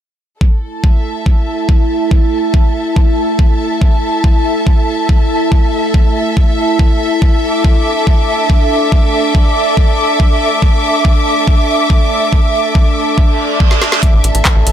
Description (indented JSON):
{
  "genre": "psychedelic trance",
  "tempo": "141 BPM",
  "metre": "4/4",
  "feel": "straight",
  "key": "unclear",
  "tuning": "A4 = 440 Hz",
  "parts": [
    { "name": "overtone-sweeping drone", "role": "sustained chords", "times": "0.7-14.7 s", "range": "A3 to E4", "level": "-17 LUFS", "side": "right 2 dB", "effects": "chorus, built-in reverb, sidechain pumping" },
    { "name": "electronic kick drum", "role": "drums", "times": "0.4-14.5 s", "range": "none", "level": "-10 LUFS", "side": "equal", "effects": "none" },
    { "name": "warm studio string section", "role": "texture", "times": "0.4-14.7 s", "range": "A4 to D6", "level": "-17 LUFS", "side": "left 2 dB", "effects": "sidechain pumping" },
    { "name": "reverse cymbal", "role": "sound effects", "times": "13.3-14.0 s", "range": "none", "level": "-18 LUFS", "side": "right 6 dB", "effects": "none" },
    { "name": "garage drum kit", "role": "drums", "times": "13.7-14.7 s", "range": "handclaps, hi-hat, snare drum", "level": "-15 LUFS", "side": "equal", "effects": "none" },
    { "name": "tight sequencer bass", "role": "bass", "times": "14.1-14.7 s", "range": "A1", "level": "-12 LUFS", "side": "equal", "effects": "none" }
  ],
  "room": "light reverb",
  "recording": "none",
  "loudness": "-10 LUFS",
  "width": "side -10 dB against mid",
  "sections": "0.4-14.7 A section",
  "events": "reverse cymbal 13.3-14.0; drum fill 13.7-14.0",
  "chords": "0.4 A5"
}